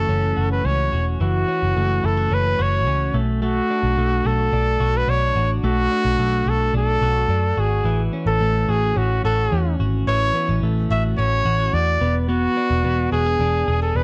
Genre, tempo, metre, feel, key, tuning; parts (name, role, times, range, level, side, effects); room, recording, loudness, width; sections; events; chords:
jangly indie pop; 108 BPM; 4/4; straight; A major; A4 = 439 Hz
clear trumpet; melody; 0.0-14.0 s; F#4 to E5; -24 LUFS; equal; slapback echo
twelve-string electric guitar; arpeggios; 0.0-14.0 s; E3 to G#4; -28 LUFS; equal; spring reverb
vintage muted picked electric bass; bass; 0.0-14.0 s; E1 to F#2; -23 LUFS; equal
little or no reverb; dry, close 1970s-style studio recording; -20 LUFS; mono
0.0-14.0 A section
0.0 F#m7; 3.1 Bm7; 7.9 A6; 12.0 E7